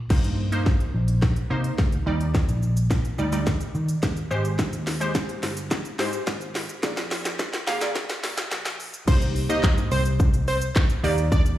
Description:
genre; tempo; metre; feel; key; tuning
dance-pop; 107 BPM; 4/4; straight; C minor; A4 = 441 Hz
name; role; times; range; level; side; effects
glassy wavetable pluck; accompaniment; 0.1-11.6 s; G3 to F5; -30 LUFS; right 1 dB; chorus, sidechain pumping
vintage muted fingered electric bass; bass; 0.1-11.6 s; G1 to Eb3; -25 LUFS; equal; sidechain pumping
house drum kit; drums; 0.1-11.6 s; crash cymbal, handclaps, hi-hat, kick drum, shaker, snare drum; -24 LUFS; equal; none
plucky unison lead; melody; 9.1-11.4 s; C5 to Eb5; -28 LUFS; equal; sidechain pumping, slapback echo
room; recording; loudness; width
light reverb; played on a big sound system in a bare room, stone room reverb, high-pass filter; -22 LUFS; side -14 dB against mid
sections
0.1-9.1 A section; 9.1-11.6 B section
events
build-up 0.1-9.1; drum fill 0.1-9.1; filter sweep 0.1-9.1; drop 9.1-11.6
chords
0.1 Cm7; 2.1 Ebmaj7; 4.3 Abmaj7; 6.8 Bb7; 9.1 Cm7; 11.0 Ebmaj7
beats
| 0.10 0.66 1.23 1.79 | 2.35 2.91 3.47 4.03 | 4.59 5.15 5.71 6.27 | 6.83 7.39 7.95 8.51 | 9.07 9.64 10.20 10.76 | 11.32

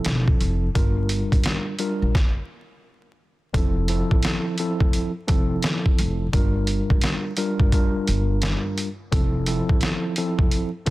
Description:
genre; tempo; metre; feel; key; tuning
hip hop, boom-bap hip-hop; 86 BPM; 4/4; swing 62% on 16ths; F major; A4 = 440 Hz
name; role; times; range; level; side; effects
mellow tine electric piano; accompaniment; 0.0-10.9 s; F3 to Bb4; -26 LUFS; equal; medium stereo tremolo, high-pass filter, low-pass filter
trip hop sampler-style drum kit; drums; 0.0-10.9 s; hi-hat, kick drum, snare drum; -21 LUFS; equal; none
upright bass; bass; 0.1-10.9 s; E1 to Bb1; -25 LUFS; equal; none
room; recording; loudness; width
little or no reverb; dense, heavily limited modern master, vinyl crackle; -20 LUFS; side -18 dB against mid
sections
0.0-3.5 A section; 3.5-10.9 B section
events
stop 2.1-3.5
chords
0.0 Fmaj7; 0.8 Gm7; 3.5 Fmaj7; 6.3 Gm7; 9.1 Fmaj7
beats
0.06 | 0.75 1.45 2.15 2.85 | 3.54 4.24 4.94 5.64 | 6.33 7.03 7.73 8.43 | 9.12 9.82 10.52

